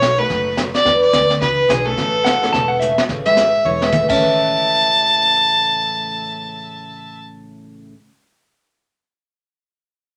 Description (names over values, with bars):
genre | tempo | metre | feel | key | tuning
country, western swing | 215 BPM | 4/4 | swing 60% on 8ths | A major | A4 = 440 Hz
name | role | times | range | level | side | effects
clear fiddle | melody | 0.0-7.2 s | G#4 to A5 | -18 LUFS | equal | none
picked steel-string acoustic guitar | accompaniment | 0.0-7.9 s | A2 to G#4 | -26 LUFS | equal | none
upright bass | bass | 0.0-7.9 s | E1 to E2 | -32 LUFS | equal | none
jazz brush drum kit | drums | 0.0-4.1 s | brushed snare drum, crash cymbal, hi-hat, kick drum, snare drum, toms | -26 LUFS | equal | none
tack piano | accompaniment | 0.2-8.0 s | A2 to B4 | -32 LUFS | equal | none
pedal steel guitar | second line | 2.2-7.2 s | E5 to A5 | -23 LUFS | equal | none
vintage hollow-body jazz guitar | second line | 3.3-7.9 s | E3 to C#4 | -28 LUFS | equal | none
room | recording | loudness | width
moderate club reverb, RT60 0.6 s | none | -16 LUFS | mono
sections
0.0-3.1 A section; 3.1-4.2 B section; 4.2-6.4 C section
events
drum fill 2.8, 3.6-4.2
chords
0.0 B7; 0.9 E7; 2.0 Amaj7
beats
0.02 0.30 0.58 | 0.86 1.14 1.42 1.69 | 1.97 2.25 2.53 2.81 | 3.09 3.37 3.65 3.92 | 4.21 4.48 4.76 5.04 | 5.32 5.60 5.88 6.16